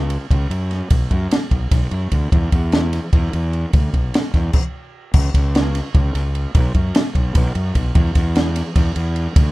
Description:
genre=math rock and midwest emo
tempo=298 BPM (eighths)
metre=7/8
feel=straight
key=unclear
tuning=A4 = 441 Hz
part: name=fuzz fingered electric bass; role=bass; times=0.0-9.5 s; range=B1 to F#2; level=-20 LUFS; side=equal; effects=overdrive
part: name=compact cocktail drum kit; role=drums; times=0.1-9.5 s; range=crash cymbal, kick drum, ride cymbal, snare drum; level=-17 LUFS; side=equal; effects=none
room=little or no reverb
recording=rough home demo mix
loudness=-16 LUFS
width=side -20 dB against mid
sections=0.0-5.1 A section; 5.1-9.5 B section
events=stop 4.5-5.1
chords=none

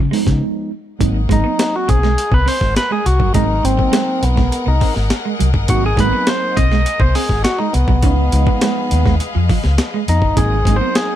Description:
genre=funk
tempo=102 BPM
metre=4/4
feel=straight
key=unclear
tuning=A4 = 441 Hz
part: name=clean electric guitar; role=riff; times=0.0-11.0 s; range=F3 to Db4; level=-24 LUFS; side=right 7 dB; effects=none
part: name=vintage muted fingered electric bass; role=bass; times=0.0-10.8 s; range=G1 to Db3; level=-16 LUFS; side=equal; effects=none
part: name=mellow tine electric piano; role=stabs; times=0.1-11.2 s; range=F3 to Eb4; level=-23 LUFS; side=right 5 dB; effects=medium stereo tremolo
part: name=breakbeat sampler-style drum kit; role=drums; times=0.1-11.1 s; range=hi-hat, kick drum, snare drum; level=-18 LUFS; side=equal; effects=none
part: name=rich studio string section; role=sustained chords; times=1.0-11.2 s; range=Ab4 to Gb5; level=-28 LUFS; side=left 4 dB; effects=none
part: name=percussive tonewheel organ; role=melody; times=1.3-11.2 s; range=Cb4 to Eb5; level=-19 LUFS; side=left 1 dB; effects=overdrive
room=little or no reverb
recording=none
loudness=-13 LUFS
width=side -11 dB against mid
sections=0.0-1.0 A section; 1.0-11.2 B section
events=break 0.4-1.0; tonewheel organ solo 1.0-11.2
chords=0.0 Db9; 1.0 Ab9; 8.0 Db9; 10.4 Ab9

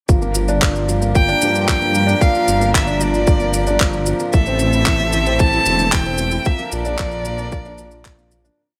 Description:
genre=piano and strings electronica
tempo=113 BPM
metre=4/4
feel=straight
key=G dorian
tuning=A4 = 441 Hz
part: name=warm string quartet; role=sustained chords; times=0.1-8.6 s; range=E3 to Bb4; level=-30 LUFS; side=equal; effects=none
part: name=felt-muted upright piano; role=riff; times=0.1-8.6 s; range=E3 to F4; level=-24 LUFS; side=equal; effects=tape echo
part: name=dark detuned saw bass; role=bass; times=0.1-8.5 s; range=E1 to G2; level=-23 LUFS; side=equal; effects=sidechain pumping
part: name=electronic kick drum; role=drums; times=0.1-8.2 s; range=none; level=-19 LUFS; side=equal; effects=none
part: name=electronic shaker and handclaps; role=drums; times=0.1-8.6 s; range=none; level=-25 LUFS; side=equal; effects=overdrive
part: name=rich violin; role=melody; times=1.1-8.3 s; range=D5 to A5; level=-22 LUFS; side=equal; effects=none
room=light reverb, small room ambience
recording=none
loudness=-17 LUFS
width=mono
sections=0.1-8.6 drop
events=drop 0.1-8.6; fade-out 5.8-8.6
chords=0.1 Gm7; 4.3 Am7; 6.5 Bbmaj7

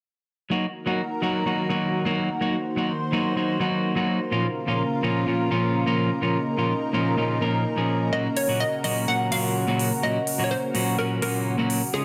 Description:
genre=EDM, festival progressive house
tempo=126 BPM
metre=4/4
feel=straight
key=unclear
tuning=A4 = 440 Hz
part: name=semi-hollow electric guitar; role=accompaniment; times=0.5-12.0 s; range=Bb2 to Bb4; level=-26 LUFS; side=equal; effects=tape echo
part: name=lush unison pad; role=sustained chords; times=0.5-12.0 s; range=Db3 to C5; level=-30 LUFS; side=equal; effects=chorus
part: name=hollow square pluck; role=melody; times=8.1-12.0 s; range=Ab4 to Gb5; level=-29 LUFS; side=equal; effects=lush chorus, tape echo
part: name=electronic hi-hat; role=drums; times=8.4-11.8 s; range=none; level=-34 LUFS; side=equal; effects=overdrive
room=moderate digital room reverb, RT60 1.0 s, digital ambience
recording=dense, heavily limited modern master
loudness=-24 LUFS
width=mono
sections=0.5-12.0 A section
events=none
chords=0.5 Ebm; 4.3 Bbm; 8.1 Gb/Bb

